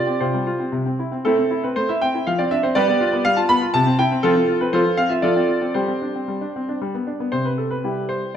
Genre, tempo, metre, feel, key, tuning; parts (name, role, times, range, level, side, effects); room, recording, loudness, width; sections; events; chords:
classical-period piano sonatina; 111-123 BPM; 3/4; rubato; C major; A4 = 440 Hz
clear concert grand piano; solo; 0.0-8.4 s; C3 to B5; -18 LUFS; equal
wet recital hall reverb, RT60 1.5 s; -18 LUFS; side -9 dB against mid
0.0-7.3 A section; 7.3-8.4 B section
0.0 Csus4; 0.7 C; 1.2 Am; 2.3 Dm7/F; 2.8 G7; 3.7 C; 4.2 F; 5.7 Gsus4; 6.8 G; 7.3 C